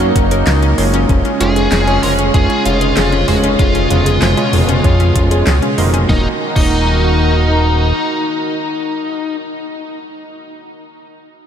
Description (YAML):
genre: synthwave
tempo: 96 BPM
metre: 4/4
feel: straight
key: Eb minor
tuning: A4 = 441 Hz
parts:
  - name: warm analog pad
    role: sustained chords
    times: 0.0-9.4 s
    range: Cb3 to Bb5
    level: -19 LUFS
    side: right 1 dB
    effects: chorus, sidechain pumping
  - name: analog pluck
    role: arpeggios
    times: 0.0-6.7 s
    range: Db4 to C6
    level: -22 LUFS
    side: left 5 dB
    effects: chorus, ping-pong delay
  - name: warm electric grand piano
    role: stabs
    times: 0.0-9.4 s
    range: Eb3 to F5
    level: -21 LUFS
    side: right 2 dB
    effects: ping-pong delay
  - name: chorused synth bass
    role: bass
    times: 0.0-7.9 s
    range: Eb1 to Gb2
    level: -15 LUFS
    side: equal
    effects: none
  - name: pop drum kit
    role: drums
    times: 0.0-6.8 s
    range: crash cymbal, handclaps, hi-hat, snare drum, toms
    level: -22 LUFS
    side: equal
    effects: overdrive
  - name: electronic kick drum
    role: drums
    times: 0.2-6.7 s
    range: none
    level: -15 LUFS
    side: equal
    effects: overdrive
  - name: biting lead guitar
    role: melody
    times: 1.4-9.4 s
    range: Eb4 to Bb4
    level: -20 LUFS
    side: left 1 dB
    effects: overdrive, tape echo
room: moderate huge ambient reverb, RT60 7.2 s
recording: dreamy mix soaked in reverb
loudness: -11 LUFS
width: side -8 dB against mid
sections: 0.0-6.1 A section; 6.1-8.6 B section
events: none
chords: 0.0 Gb; 1.1 Db/F; 6.1 Ebm